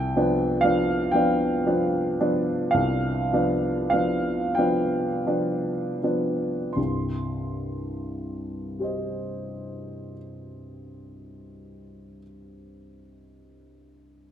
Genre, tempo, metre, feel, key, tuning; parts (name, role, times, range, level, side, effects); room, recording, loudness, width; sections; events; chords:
classical, romantic nocturne for solo piano; 25-42 BPM (dotted quarters); 12/8; rubato; C minor; A4 = 441 Hz
warm upright piano; solo; 0.0-14.3 s; C2 to C6; -23 LUFS; equal
moderate recital hall reverb, RT60 1.7 s; close, detailed microphones; -22 LUFS; side -9 dB against mid
0.0-6.8 A section; 6.8-14.3 B section
slowing down 0.0-6.8
0.0 G7/C; 6.8 Cm